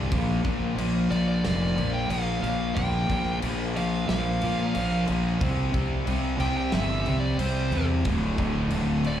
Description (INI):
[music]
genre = hard rock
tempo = 91 BPM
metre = 4/4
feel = straight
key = unclear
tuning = A4 = 440 Hz
[part]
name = distorted electric guitar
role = riff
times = 0.0-9.2 s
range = D2 to C4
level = -33 LUFS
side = equal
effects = overdrive, slapback echo
[part]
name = overdriven electric guitar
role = riff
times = 0.0-9.2 s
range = D2 to C4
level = -33 LUFS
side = left 12 dB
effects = none
[part]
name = sludgy distorted guitar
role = riff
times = 0.0-9.2 s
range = D2 to C4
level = -31 LUFS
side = right 6 dB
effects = overdrive, slapback echo
[part]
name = fuzz fingered electric bass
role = bass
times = 0.0-9.2 s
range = D1 to Bb2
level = -27 LUFS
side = left 1 dB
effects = overdrive
[part]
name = big rock drum kit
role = drums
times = 0.1-9.2 s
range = crash cymbal, kick drum, snare drum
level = -32 LUFS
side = equal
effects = none
[part]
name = dark smooth lead guitar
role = melody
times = 1.1-9.2 s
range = C5 to G5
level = -32 LUFS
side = right 1 dB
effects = overdrive, tape echo
[sound]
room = little or no reverb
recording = live gig heard through the venue's PA, club reverb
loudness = -23 LUFS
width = side -10 dB against mid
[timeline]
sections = 0.0-9.2 A section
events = none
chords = 0.1 Bb5; 5.4 C5; 8.1 D5